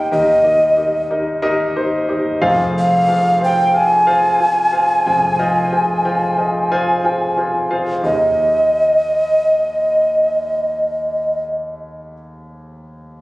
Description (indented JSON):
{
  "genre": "pop",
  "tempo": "91 BPM",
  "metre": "4/4",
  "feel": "straight",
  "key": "Eb major",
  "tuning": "A4 = 442 Hz",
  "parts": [
    { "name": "breathy alto ocarina", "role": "melody", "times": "0.0-11.4 s", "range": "Eb5 to Ab5", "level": "-14 LUFS", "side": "equal", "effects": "none" },
    { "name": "warm grand piano", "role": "accompaniment", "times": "0.0-13.2 s", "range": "F1 to Ab5", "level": "-19 LUFS", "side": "equal", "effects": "none" }
  ],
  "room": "moderate scoring stage reverb, RT60 1.7 s",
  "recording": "recorded on a phone in the room, club reverb, compression",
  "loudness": "-14 LUFS",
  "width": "side -20 dB against mid",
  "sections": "0.0-8.0 A section; 8.0-10.7 B section",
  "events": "none",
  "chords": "0.0 Eb; 2.4 Fm; 8.0 Eb",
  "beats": "| 0.12 0.78 1.44 2.10 | 2.75 3.42 4.08 4.74 | 5.39 6.05 6.71 7.38 | 8.04 8.70 9.36 10.02"
}